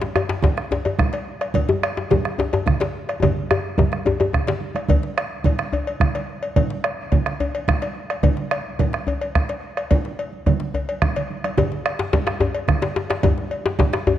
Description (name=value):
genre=west african traditional, West African drum ensemble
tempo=144 BPM (dotted quarters)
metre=12/8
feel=straight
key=none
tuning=none
part: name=djembe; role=percussion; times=0.0-14.2 s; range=none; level=-28 LUFS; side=left 3 dB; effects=none
part: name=djembe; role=percussion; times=0.0-4.6, 11.6-14.2 s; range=none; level=-22 LUFS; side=left 4 dB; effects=none
part: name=bombo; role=percussion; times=0.2-14.1 s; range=none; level=-22 LUFS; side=right 2 dB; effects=none
part: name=cowbell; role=percussion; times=0.2-14.2 s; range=none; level=-28 LUFS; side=left 3 dB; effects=none
part: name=congas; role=percussion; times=0.4-14.0 s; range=none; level=-26 LUFS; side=right 6 dB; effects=none
room=moderate scoring stage reverb, RT60 1.7 s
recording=worn, warbling old tape, cassette tape, warbly pitch drift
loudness=-19 LUFS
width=side -11 dB against mid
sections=0.0-4.9 A section; 4.9-14.2 B section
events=drum fill 3.2-4.9, 11.2-11.6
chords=none